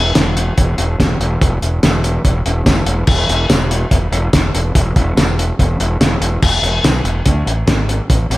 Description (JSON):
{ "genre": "classic rock", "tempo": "144 BPM", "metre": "4/4", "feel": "straight", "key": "E major", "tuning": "A4 = 440 Hz", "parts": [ { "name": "fuzz fingered electric bass", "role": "bass", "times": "0.0-8.4 s", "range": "E1 to D2", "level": "-16 LUFS", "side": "equal", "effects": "overdrive" }, { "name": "cloth-damped thuddy drum kit", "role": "drums", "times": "0.2-8.4 s", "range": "crash cymbal, hi-hat, kick drum, snare drum, tambourine", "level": "-14 LUFS", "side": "equal", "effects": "none" } ], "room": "moderate recital hall reverb, RT60 1.3 s", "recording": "big arena sound", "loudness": "-12 LUFS", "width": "side -18 dB against mid", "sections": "0.0-6.4 A section; 6.4-8.4 B section", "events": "none", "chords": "none", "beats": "0.16 0.57 0.99 | 1.41 1.83 2.24 2.66 | 3.08 3.50 3.91 4.33 | 4.75 5.17 5.58 6.00 | 6.42 6.84 7.26 7.68 | 8.10" }